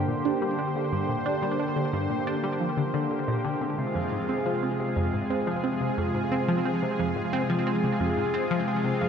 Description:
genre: ambient, sequencer-driven space music.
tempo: 89 BPM.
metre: 4/4.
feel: straight.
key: F dorian.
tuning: A4 = 440 Hz.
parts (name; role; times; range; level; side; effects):
lush unison pad; sustained chords; 0.0-9.1 s; C3 to C5; -28 LUFS; equal; chorus.
tight sequenced synth; riff; 0.0-9.1 s; F2 to D4; -29 LUFS; equal; chorus, phaser, tape echo.
vibraphone with hard mallets; arpeggios; 0.2-9.1 s; D4 to C5; -34 LUFS; moving between left 2 dB and right 7 dB; auto-pan, low-pass filter, tape echo.
room: wet concert hall reverb, RT60 2.3 s.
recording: none.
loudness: -25 LUFS.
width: side -7 dB against mid.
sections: 0.0-9.1 A section.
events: filter sweep on vibraphone 0.0-9.1.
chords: 0.0 Gm; 3.6 Fm.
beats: 0.25 | 0.92 1.60 2.27 2.95 | 3.62 4.29 4.97 5.64 | 6.32 6.99 7.67 8.34 | 9.01.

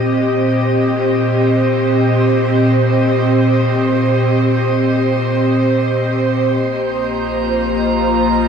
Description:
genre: ambient.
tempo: free time.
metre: none.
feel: none.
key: unclear.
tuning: A4 = 440 Hz.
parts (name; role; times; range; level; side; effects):
airy breathy pad; sustained chords; 0.0-8.5 s; Bb2 to Eb5; -13 LUFS; equal; chorus.
warm sub bass; bass; 6.6-8.5 s; Bb1; -28 LUFS; equal; none.
drifting glass-harmonics texture; texture; 7.1-8.5 s; Bb5; -22 LUFS; right 9 dB; chorus, built-in reverb.
room: wet shimmer reverb, RT60 7.6 s.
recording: none.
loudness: -13 LUFS.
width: side -7 dB against mid.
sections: 0.0-6.6 A section; 6.6-8.5 B section.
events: none.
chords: 0.0 Cm7/Bb; 6.6 Bb5.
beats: free time.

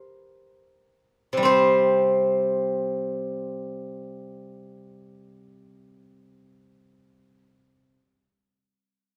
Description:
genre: chinese traditional, Chinese solo plucked strings.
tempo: free time.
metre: none.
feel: none.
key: unclear.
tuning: A4 = 441 Hz.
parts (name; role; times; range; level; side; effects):
steel-string zither; solo; 0.0-8.0 s; C3 to C5; -23 LUFS; equal; none.
room: light reverb.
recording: none.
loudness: -23 LUFS.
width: mono.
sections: 0.0-1.5 A section; 1.5-7.6 B section.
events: slowing down 0.0-1.5.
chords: none.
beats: free time.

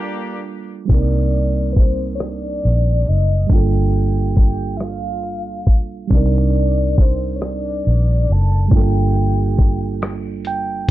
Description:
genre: slow six-eight R&B.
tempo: 46 BPM (dotted quarters).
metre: 6/8.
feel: straight.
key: unclear.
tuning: A4 = 440 Hz.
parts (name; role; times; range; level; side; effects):
soft octave-layered synth lead; melody; 0.0-10.4 s; B4 to A5; -26 LUFS; left 2 dB; chorus, phaser, ping-pong delay.
mellow reed electric piano; accompaniment; 0.0-10.9 s; G3 to G5; -23 LUFS; right 7 dB; none.
vintage muted fingered electric bass; bass; 0.9-10.9 s; F#1 to C2; -18 LUFS; equal; none.
dusty soul sampler-style drum kit; drums; 0.9-10.9 s; crash cymbal, hi-hat, kick drum, rim click; -14 LUFS; equal; none.
room: little or no reverb.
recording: low-pass filter.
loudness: -15 LUFS.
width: side -15 dB against mid.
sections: 0.9-10.9 A section.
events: break 0.0-0.9; filter sweep 0.9-10.9; reed electric piano fill 10.0-10.9.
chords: 0.0 Gm9; 0.9 Cm9; 3.5 Gm9; 6.1 Cm9; 8.7 Gm9.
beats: | 0.89 2.20 | 3.50 4.81 | 6.11 7.42 | 8.72 10.02.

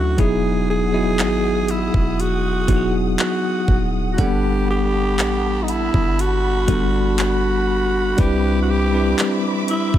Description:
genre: contemporary R&B.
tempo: 60 BPM.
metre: 4/4.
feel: straight.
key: unclear.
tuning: A4 = 441 Hz.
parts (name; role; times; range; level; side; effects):
growling alto saxophone; melody; 0.0-10.0 s; D#4 to G#4; -22 LUFS; right 1 dB; none.
bell-like tine electric piano; accompaniment; 0.0-10.0 s; F#3 to F#5; -21 LUFS; left 1 dB; fast stereo tremolo.
warm studio string section; sustained chords; 0.0-10.0 s; G3 to F#6; -30 LUFS; right 2 dB; none.
warm 808-style bass; bass; 0.0-10.0 s; D#1 to D2; -22 LUFS; equal; none.
smooth R&B drum kit; drums; 0.2-10.0 s; handclaps, hi-hat, kick drum; -20 LUFS; equal; none.
room: digital ambience.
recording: none.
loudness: -16 LUFS.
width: side -11 dB against mid.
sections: 0.2-10.0 A section.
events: none.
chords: 0.2 Emaj9; 4.2 Gmaj9; 8.2 Cmaj9.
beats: | 0.19 1.19 2.19 3.19 | 4.19 5.19 6.19 7.19 | 8.19 9.19.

